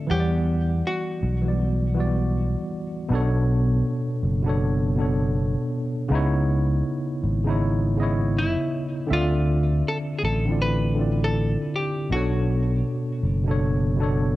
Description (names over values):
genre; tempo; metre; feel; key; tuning
lo-fi hip hop; 80 BPM; 4/4; swing 62% on 16ths; B minor; A4 = 440 Hz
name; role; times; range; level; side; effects
archtop guitar, miked and amplified; melody; 0.0-2.3, 8.4-14.3 s; E4 to B4; -29 LUFS; left 1 dB; low-pass filter
tine electric piano; accompaniment; 0.0-14.4 s; B2 to F#5; -24 LUFS; equal; overdrive, fast stereo tremolo, low-pass filter
sustaining fretless electric bass; bass; 0.1-14.4 s; F#1 to E2; -23 LUFS; equal; none
room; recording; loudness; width
little or no reverb; cassette tape; -21 LUFS; side -16 dB against mid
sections
0.0-14.4 A section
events
none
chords
0.1 Em7; 3.1 Bm7; 6.1 C#m7; 9.1 Dm7; 12.1 Bm7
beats
| 0.10 0.85 1.60 2.35 | 3.10 3.85 4.60 5.35 | 6.10 6.85 7.60 8.35 | 9.10 9.85 10.60 11.35 | 12.10 12.85 13.60 14.35